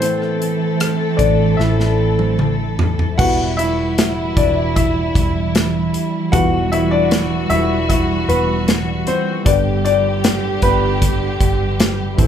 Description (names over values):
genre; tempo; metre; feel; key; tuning
pop ballad; 77 BPM; 4/4; straight; E minor; A4 = 437 Hz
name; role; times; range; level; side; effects
warm baby grand piano; accompaniment; 0.0-12.3 s; D3 to F#5; -19 LUFS; left 2 dB; none
warm studio string section; sustained chords; 0.0-12.3 s; C3 to A4; -20 LUFS; right 1 dB; none
vintage muted fingered electric bass; bass; 0.0-12.3 s; E1 to A1; -21 LUFS; right 1 dB; none
modern studio drum kit; drums; 0.0-12.3 s; crash cymbal, hi-hat, kick drum, rim click, snare drum, toms; -18 LUFS; equal; none
room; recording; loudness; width
moderate large studio reverb, RT60 0.9 s; band playing live in one room; -14 LUFS; side -9 dB against mid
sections
0.0-3.2 A section; 3.2-12.3 B section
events
grand piano solo 0.0-3.2, 3.2-12.3; drum fill 1.6-3.2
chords
0.0 Am; 3.2 Em; 9.5 G